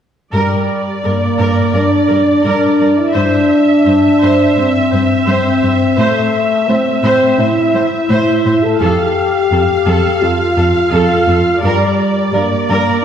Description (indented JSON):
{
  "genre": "cinematic, hybrid orchestral and electronic film score",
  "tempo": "85 BPM",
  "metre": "4/4",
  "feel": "straight",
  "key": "G dorian",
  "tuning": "A4 = 440 Hz",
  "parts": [
    { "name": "rich symphonic viola section", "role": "accompaniment", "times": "0.3-13.0 s", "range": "A4 to F5", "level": "-16 LUFS", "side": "right 1 dB", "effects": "none" },
    { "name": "dark French horn section", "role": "sustained chords", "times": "0.3-13.0 s", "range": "G3 to A4", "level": "-13 LUFS", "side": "equal", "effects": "none" },
    { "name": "warm symphonic cello section", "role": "bass", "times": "0.3-12.8 s", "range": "F2 to A2", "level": "-17 LUFS", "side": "equal", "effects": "none" }
  ],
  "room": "wet scoring stage reverb, RT60 1.5 s",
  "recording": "heard from further back in the room",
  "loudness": "-10 LUFS",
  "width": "side -8 dB against mid",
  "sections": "0.3-13.0 A section",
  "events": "none",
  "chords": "0.3 Gm; 3.2 C/G; 6.0 Am; 8.8 F; 11.6 Gm"
}